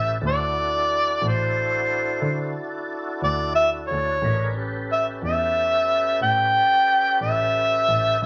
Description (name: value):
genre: slow blues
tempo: 60 BPM (dotted quarters)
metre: 12/8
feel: straight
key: A mixolydian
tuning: A4 = 438 Hz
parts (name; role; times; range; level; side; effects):
- mellow harmonica; melody; 0.0-8.3 s; C5 to G5; -22 LUFS; equal; none
- tonewheel organ; sustained chords; 0.0-8.3 s; C#4 to B4; -33 LUFS; equal; slow rotary speaker, overdrive, chorus vibrato
- clear double bass; bass; 0.0-8.3 s; A1 to D3; -30 LUFS; equal; none
room: moderate large studio reverb, RT60 0.8 s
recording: nothing above 8.0 kHz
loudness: -22 LUFS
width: mono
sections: 0.0-8.3 A section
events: none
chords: 0.2 D9; 4.2 A9